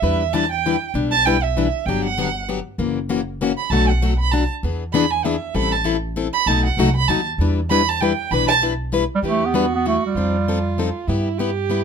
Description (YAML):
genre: acoustic string swing (jazz manouche)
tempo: 195 BPM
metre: 3/4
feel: swing 59% on 8ths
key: E minor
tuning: A4 = 441 Hz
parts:
  - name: dark violin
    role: second line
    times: 0.0-11.8 s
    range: E4 to B5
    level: -21 LUFS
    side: right 7 dB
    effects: none
  - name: picked plugged-in steel-string acoustic guitar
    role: accompaniment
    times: 0.0-11.8 s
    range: B2 to B4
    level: -21 LUFS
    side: left 6 dB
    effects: none
  - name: upright bass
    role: bass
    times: 0.0-11.8 s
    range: F#1 to G2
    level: -23 LUFS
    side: equal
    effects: none
  - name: breathy clarinet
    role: melody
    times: 9.2-10.9 s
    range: G3 to B3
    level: -20 LUFS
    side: right 3 dB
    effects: none
room: light reverb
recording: minimal, uncompressed stereo recording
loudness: -17 LUFS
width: side -6 dB against mid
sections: 0.0-1.9 A section; 1.9-9.2 A section; 9.2-11.8 B section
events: violin solo 0.0-9.2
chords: 0.0 Em7; 1.9 Gmaj7; 2.8 F#7; 3.7 Bm7; 4.6 E7; 5.5 Am7; 6.5 B7; 7.4 Em7; 10.2 F9; 11.1 G6